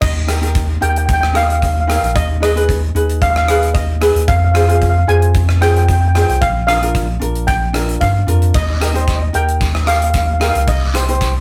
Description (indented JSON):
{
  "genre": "calypso",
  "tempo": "112 BPM",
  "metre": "4/4",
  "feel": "swing 53% on 16ths",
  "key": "Eb major",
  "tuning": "A4 = 440 Hz",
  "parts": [
    { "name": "steel pan", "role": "melody", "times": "0.0-11.4 s", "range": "Eb5 to Ab5", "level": "-20 LUFS", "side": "equal", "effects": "none" },
    { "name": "saturated sub bass", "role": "bass", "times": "0.0-11.4 s", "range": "Bb1 to G2", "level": "-18 LUFS", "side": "equal", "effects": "none" },
    { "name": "gated 80s drum kit", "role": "drums", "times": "0.0-11.3 s", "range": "crash cymbal, hi-hat, kick drum, rim click", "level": "-22 LUFS", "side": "equal", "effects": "none" },
    { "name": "ukulele", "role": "accompaniment", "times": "0.3-11.3 s", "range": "D4 to C5", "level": "-22 LUFS", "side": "equal", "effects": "none" },
    { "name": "guiro", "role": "percussion", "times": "8.5-11.3 s", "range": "none", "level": "-30 LUFS", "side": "equal", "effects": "none" }
  ],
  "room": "wet small room reverb, RT60 0.5 s",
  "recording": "rough rehearsal-room recording",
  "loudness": "-15 LUFS",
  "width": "mono",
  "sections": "0.0-11.4 A section",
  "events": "none",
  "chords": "0.0 Eb; 2.1 Abm/Eb; 4.3 Fm; 6.4 Bb; 8.5 Eb; 10.7 Cm",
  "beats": "| 0.01 0.55 1.08 1.61 | 2.15 2.68 3.21 3.75 | 4.28 4.82 5.35 5.88 | 6.42 6.95 7.48 8.01 | 8.55 9.08 9.61 10.14 | 10.68 11.21"
}